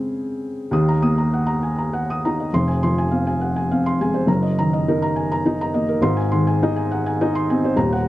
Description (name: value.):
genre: neoclassical minimalist piano.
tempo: 68 BPM (dotted quarters).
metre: 6/8.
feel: rubato.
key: Eb dorian.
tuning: A4 = 440 Hz.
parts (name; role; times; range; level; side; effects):
felt-muted upright piano; solo; 0.0-8.1 s; Eb1 to Eb6; -18 LUFS; equal; none.
room: little or no reverb.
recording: dry, close 1970s-style studio recording.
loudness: -18 LUFS.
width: side -16 dB against mid.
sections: 0.7-8.1 A section.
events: none.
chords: 0.0 Db5; 0.7 Ebm; 2.5 Fm; 4.3 Ebm/Gb; 6.0 Ab.